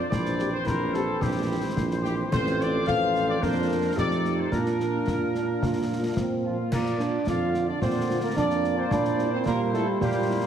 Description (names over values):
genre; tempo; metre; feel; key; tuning
military-style march for wind band; 109 BPM; 2/4; straight; Bb major; A4 = 440 Hz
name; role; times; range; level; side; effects
warm trumpet section; melody; 0.0-10.5 s; F4 to F5; -32 LUFS; left 2 dB; none
warm woodwind section; second line; 0.0-10.5 s; D4 to D5; -33 LUFS; left 1 dB; none
dark trombone section; sustained chords; 0.0-10.5 s; D3 to F4; -34 LUFS; equal; none
mellow tuba; bass; 0.1-10.5 s; A1 to Bb2; -28 LUFS; right 3 dB; none
concert snare drum, concert bass drum and clash cymbals; drums; 0.1-10.5 s; none; -32 LUFS; left 1 dB; none
dark French horn section; accompaniment; 0.4-10.4 s; E3 to Bb4; -33 LUFS; left 3 dB; none
clear euphonium; second line; 6.4-10.5 s; F3 to F4; -27 LUFS; right 4 dB; none
room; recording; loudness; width
wet scoring stage reverb, RT60 2.0 s; heavily compressed radio sound; -23 LUFS; side -8 dB against mid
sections
0.0-6.7 A section; 6.7-10.5 A section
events
none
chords
0.1 C7/Bb; 2.3 F/A; 3.4 Bb/F; 4.0 F9; 4.5 Bb; 8.9 C7/Bb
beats
| 0.11 0.66 | 1.21 1.76 | 2.32 2.87 | 3.42 3.97 | 4.52 5.07 | 5.62 6.17 | 6.72 7.27 | 7.82 8.37 | 8.91 9.46 | 10.01